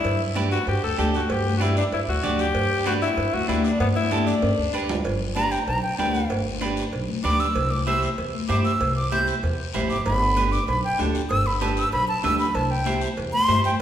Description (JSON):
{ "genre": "latin, cumbia", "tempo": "192 BPM", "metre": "4/4", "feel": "straight", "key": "G major", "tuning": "A4 = 440 Hz", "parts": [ { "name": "raspy tenor saxophone", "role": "second line", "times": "0.0-4.9 s", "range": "B3 to A4", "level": "-25 LUFS", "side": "left 3 dB", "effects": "none" }, { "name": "upright bass", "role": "bass", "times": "0.0-13.7 s", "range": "G1 to G2", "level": "-26 LUFS", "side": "equal", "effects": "none" }, { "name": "congas", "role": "percussion", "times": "0.0-13.6 s", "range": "none", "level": "-30 LUFS", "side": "left 4 dB", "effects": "none" }, { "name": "cowbell and timbales", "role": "percussion", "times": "0.0-13.6 s", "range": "none", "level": "-33 LUFS", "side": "right 4 dB", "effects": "none" }, { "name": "guiro", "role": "percussion", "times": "0.0-13.8 s", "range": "none", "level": "-38 LUFS", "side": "left 6 dB", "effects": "none" }, { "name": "electric guitar at the edge of break-up", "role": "accompaniment", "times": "0.4-13.7 s", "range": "D4 to D5", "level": "-29 LUFS", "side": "right 4 dB", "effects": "none" }, { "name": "breathy silver concert flute", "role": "melody", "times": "5.4-13.8 s", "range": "G5 to G6", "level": "-24 LUFS", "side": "right 1 dB", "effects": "none" } ], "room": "wet recital hall reverb, RT60 1.5 s", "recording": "recorded in a church or concert hall", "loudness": "-20 LUFS", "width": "side -10 dB against mid", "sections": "0.0-5.1 A section; 5.1-13.8 B section", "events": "tenor saxophone solo 0.0-5.1; drum fill 3.8-5.1; flute solo 5.1-13.8", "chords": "0.0 G; 7.6 C; 10.1 G; 12.6 C" }